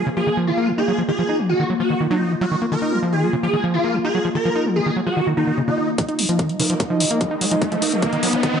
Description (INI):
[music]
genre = psychedelic trance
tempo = 147 BPM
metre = 4/4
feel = straight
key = Eb minor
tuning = A4 = 440 Hz
[part]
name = swarming rave lead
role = melody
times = 0.0-5.9 s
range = Eb4 to Bb4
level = -23 LUFS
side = equal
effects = chorus, phaser, sidechain pumping, analog delay
[part]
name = pulsing gated texture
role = sustained chords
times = 0.0-8.6 s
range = Bb3 to Eb5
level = -24 LUFS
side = equal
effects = chorus, built-in reverb, sidechain pumping
[part]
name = overdriven acid bass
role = riff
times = 0.0-8.6 s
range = Db3 to F4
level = -22 LUFS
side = equal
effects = distortion, auto-pan, sidechain pumping, analog delay
[part]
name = electronic hi-hat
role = drums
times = 6.0-8.5 s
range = none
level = -24 LUFS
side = left 1 dB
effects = low-pass filter on cymbals, low-pass filter on hats, low-pass filter on room
[part]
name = electronic kick drum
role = drums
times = 6.0-8.5 s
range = none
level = -23 LUFS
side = equal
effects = high-pass filter on kick, high-pass filter on room
[part]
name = riser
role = sound effects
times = 6.6-8.6 s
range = none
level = -24 LUFS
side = left 2 dB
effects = none
[part]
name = formant-sweep wobble bass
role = second line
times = 6.6-8.4 s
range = Bb3 to Db4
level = -32 LUFS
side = right 2 dB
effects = ensemble chorus, cassette tape, sidechain pumping, high-pass filter, analog delay
[sound]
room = moderate plate reverb, RT60 1.3 s, digital ambience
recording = dreamy mix soaked in reverb, nothing above 10.6 kHz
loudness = -18 LUFS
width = side -7 dB against mid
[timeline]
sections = 0.0-6.0 A section; 6.0-8.6 B section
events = build-up 6.0-8.6; filter sweep on acid bass 6.0-8.6; filter sweep on synth texture 6.0-8.6; riser 6.6-8.6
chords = 0.0 Eb5